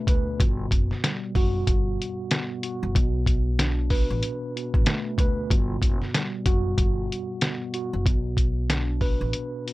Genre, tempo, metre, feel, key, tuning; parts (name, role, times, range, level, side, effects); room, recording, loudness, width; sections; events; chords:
hip hop, boom-bap hip-hop; 94 BPM; 4/4; swing 59% on 16ths; B minor; A4 = 436 Hz
mellow tine electric piano; accompaniment; 0.0-9.7 s; G2 to B4; -29 LUFS; right 1 dB; medium stereo tremolo, cassette tape, high-pass filter, low-pass filter
upright bass; bass; 0.1-9.3 s; F#1 to D2; -27 LUFS; equal
lo-fi sampler-style drum kit; drums; 0.1-9.7 s; hi-hat, kick drum, snare drum; -23 LUFS; equal
little or no reverb; -22 LUFS; side -18 dB against mid
0.0-8.1 A section; 8.1-9.7 B section
0.4 Gmaj7; 2.9 Bm7; 5.5 Gmaj7; 8.1 Bm